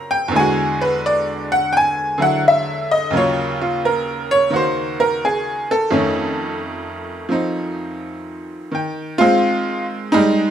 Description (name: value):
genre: solo jazz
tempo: 86 BPM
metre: 4/4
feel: swing 66% on 8ths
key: unclear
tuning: A4 = 441 Hz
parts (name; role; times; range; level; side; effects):
- tack piano; solo; 0.0-10.5 s; Eb2 to G#5; -16 LUFS; equal; none
room: moderate large studio reverb, RT60 1.1 s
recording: none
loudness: -16 LUFS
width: side -9 dB against mid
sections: 0.0-8.7 A section; 8.7-10.5 B section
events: honky-tonk piano solo 0.0-8.7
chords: 0.3 E9; 3.1 Ebm9; 5.9 F7b13; 8.7 Fm9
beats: | 0.33 1.02 1.72 2.42 | 3.12 3.81 4.51 5.21 | 5.91 6.61 7.31 8.01 | 8.71 9.41 10.11